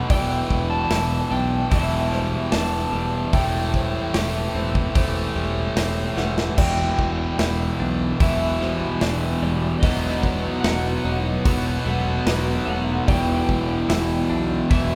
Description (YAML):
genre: post-rock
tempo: 74 BPM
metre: 4/4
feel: straight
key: E minor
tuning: A4 = 440 Hz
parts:
  - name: electric slide guitar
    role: melody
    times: 0.0-15.0 s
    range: D5 to A5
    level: -32 LUFS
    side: equal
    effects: none
  - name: felt-muted upright piano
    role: arpeggios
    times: 0.0-15.0 s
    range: A4 to E5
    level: -39 LUFS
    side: equal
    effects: none
  - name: twelve-string electric guitar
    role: arpeggios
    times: 0.0-15.0 s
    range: E3 to G4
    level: -36 LUFS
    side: equal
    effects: none
  - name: distorted electric guitar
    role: riff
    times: 0.0-15.0 s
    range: E2 to B3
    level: -28 LUFS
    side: equal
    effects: overdrive
  - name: modern bright fingered electric bass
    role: bass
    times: 0.1-15.0 s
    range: E1 to B1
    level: -28 LUFS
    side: equal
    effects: none
  - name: big rock drum kit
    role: drums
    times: 0.1-14.9 s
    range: crash cymbal, hi-hat, kick drum, snare drum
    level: -27 LUFS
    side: equal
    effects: none
  - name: crunchy overdriven guitar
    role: riff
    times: 6.6-15.0 s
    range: E2 to B3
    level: -30 LUFS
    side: equal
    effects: none
room: wet cathedral reverb, RT60 4.7 s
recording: recorded in a church or concert hall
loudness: -22 LUFS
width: mono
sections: 0.0-15.0 A section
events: drum fill 6.2-6.6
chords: 0.1 Em7; 3.3 Am7/E; 6.6 Em7; 9.8 B7/E; 13.1 Em7